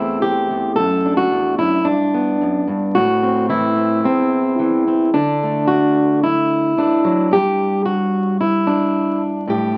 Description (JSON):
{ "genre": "folk, solo fingerstyle acoustic guitar", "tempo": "111 BPM", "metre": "4/4", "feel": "straight", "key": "unclear", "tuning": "A4 = 440 Hz", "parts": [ { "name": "fingerpicked plugged-in steel-string acoustic guitar", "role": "solo", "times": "0.0-9.8 s", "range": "E2 to A4", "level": "-17 LUFS", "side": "equal", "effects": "none" } ], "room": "wet club reverb, RT60 0.5 s", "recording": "very old 78 rpm record, vinyl crackle", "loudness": "-17 LUFS", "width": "mono", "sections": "0.0-5.1 A section; 5.1-9.8 B section", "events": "none", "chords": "0.0 Am/E; 0.8 D/F#; 1.9 G; 3.0 Am; 5.1 Dsus2; 7.3 N.C.", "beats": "0.24 | 0.78 1.32 1.86 2.41 | 2.95 3.50 4.04 4.59 | 5.15 5.69 6.24 6.78 | 7.32 7.86 8.40 8.94 | 9.48" }